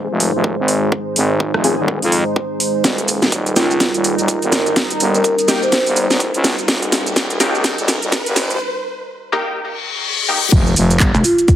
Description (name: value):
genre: bass house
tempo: 125 BPM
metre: 4/4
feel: swing 59% on 16ths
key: unclear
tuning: A4 = 436 Hz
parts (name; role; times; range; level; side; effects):
- deep dark ambient pad; sustained chords; 0.0-11.6 s; G3 to C5; -22 LUFS; right 1 dB; chorus, built-in reverb, sidechain pumping
- growling FM bass; bass; 0.0-11.1 s; Eb1 to F2; -19 LUFS; equal; sidechain pumping, high-pass filter
- house drum kit; drums; 0.2-11.6 s; crash cymbal, handclaps, hi-hat, rim click, shaker, snare drum; -18 LUFS; equal; none
- electronic kick drum; drums; 0.4-11.6 s; none; -16 LUFS; equal; high-pass filter on kick, high-pass filter on room
- orchestra-hit-like synth stab; stabs; 1.6-10.4 s; Bb3 to Ab4; -22 LUFS; left 2 dB; built-in reverb, sidechain pumping, digital delay
- riser, reverse cymbal and impact; sound effects; 5.0-11.6 s; none; -23 LUFS; left 2 dB; none
- marimba with soft mallets; melody; 3.6-5.8, 11.2-11.5 s; F4 to C5; -18 LUFS; equal; vintage 12-bit sampler grit
- pulsing pluck wobble bass; bass; 11.1-11.2 s; F1; -14 LUFS; equal; chorus, overdrive, sidechain pumping
room: moderate plate reverb, RT60 1.3 s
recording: heavily compressed radio sound, high-pass filter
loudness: -14 LUFS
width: side -11 dB against mid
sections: 0.0-10.5 A section; 10.5-11.6 B section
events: build-up 0.0-10.5; filter sweep on synth stab 0.0-10.5; filter sweep 0.0-10.5; drum fill 2.8-8.6; break 8.6-10.5; reverse cymbal 9.8-10.5; drop 10.5-11.6; impact 10.5-11.6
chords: 0.0 Fm; 2.8 Eb; 10.5 Fm